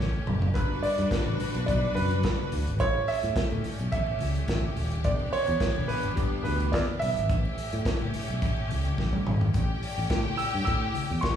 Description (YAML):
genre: disco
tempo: 107 BPM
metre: 4/4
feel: straight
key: unclear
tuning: A4 = 440 Hz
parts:
  - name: warm grand piano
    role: melody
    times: 0.0-11.4 s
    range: G4 to E6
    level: -31 LUFS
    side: right 3 dB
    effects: none
  - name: bright studio string section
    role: sustained chords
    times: 0.0-11.4 s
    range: E3 to B4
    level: -35 LUFS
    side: left 2 dB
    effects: none
  - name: fingered electric bass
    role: bass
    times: 0.0-11.2 s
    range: D#1 to A2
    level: -29 LUFS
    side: equal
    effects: none
  - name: warm soul drum kit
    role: drums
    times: 0.0-11.4 s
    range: hi-hat, kick drum, snare drum, toms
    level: -30 LUFS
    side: equal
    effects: none
  - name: congas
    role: percussion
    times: 0.1-11.4 s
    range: none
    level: -38 LUFS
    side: left 4 dB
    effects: none
  - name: rich studio violin section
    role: second line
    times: 9.5-11.4 s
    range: G4 to G5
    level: -33 LUFS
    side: left 5 dB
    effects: none
room: wet large studio reverb, RT60 1.3 s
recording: band playing live in one room, studio reverb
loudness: -25 LUFS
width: side -9 dB against mid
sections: 0.0-9.5 A section; 9.5-11.4 B section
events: drum fill 0.0-0.6, 9.0-9.5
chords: 0.0 A7; 0.6 Gmaj7; 2.8 A7; 5.0 Em7; 7.3 A7